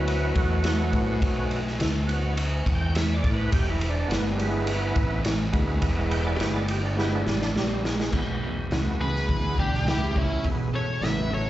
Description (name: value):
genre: blues rock power trio and southern rock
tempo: 104 BPM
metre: 4/4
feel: straight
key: unclear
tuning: A4 = 436 Hz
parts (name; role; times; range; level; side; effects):
- overdriven tonewheel organ; sustained chords; 0.0-11.5 s; F#3 to G5; -30 LUFS; right 2 dB; slow rotary speaker, chorus vibrato
- fuzz fingered electric bass; bass; 0.0-11.5 s; E1 to A2; -27 LUFS; equal; overdrive
- raw garage drum kit; drums; 0.1-11.2 s; crash cymbal, hi-hat, kick drum, ride cymbal, snare drum; -27 LUFS; equal; none
- sludgy distorted guitar; riff; 8.1-11.5 s; E2 to C#3; -30 LUFS; right 1 dB; overdrive
- octave-fuzz lead guitar; melody; 9.0-11.5 s; E4 to E5; -29 LUFS; left 1 dB; distortion, slapback echo
- bluesy overdriven lead guitar; second line; 9.0-11.5 s; C#4 to B4; -36 LUFS; right 3 dB; distortion, slapback echo
room: light reverb, studio reverb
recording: live gig heard through the venue's PA, club reverb, nothing above 7.9 kHz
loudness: -23 LUFS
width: side -14 dB against mid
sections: 0.0-8.1 A section; 8.1-11.5 B section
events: tonewheel organ solo 0.0-8.1; drum fill 7.0-8.1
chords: 0.0 B5; 3.5 E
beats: 0.08 0.65 | 1.23 1.80 2.38 2.95 | 3.52 4.10 4.67 5.25 | 5.82 6.40 6.97 7.55 | 8.12 8.70 9.28 9.86 | 10.44 11.01